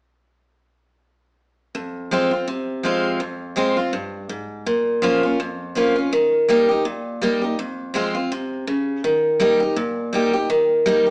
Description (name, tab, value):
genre	bluegrass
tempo	165 BPM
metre	4/4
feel	swing 56% on 8ths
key	F minor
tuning	A4 = 441 Hz
part	picked steel-string acoustic guitar	solo	1.7-11.1 s	F2 to G4	-18 LUFS	equal	none
room	moderate large studio reverb, RT60 1.1 s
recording	heard from further back in the room, small speaker sound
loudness	-18 LUFS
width	side -38 dB against mid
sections	1.7-11.1 A section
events	none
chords	1.7 Fm; 4.7 Bbm; 6.1 Eb; 7.6 Fm; 9.0 Eb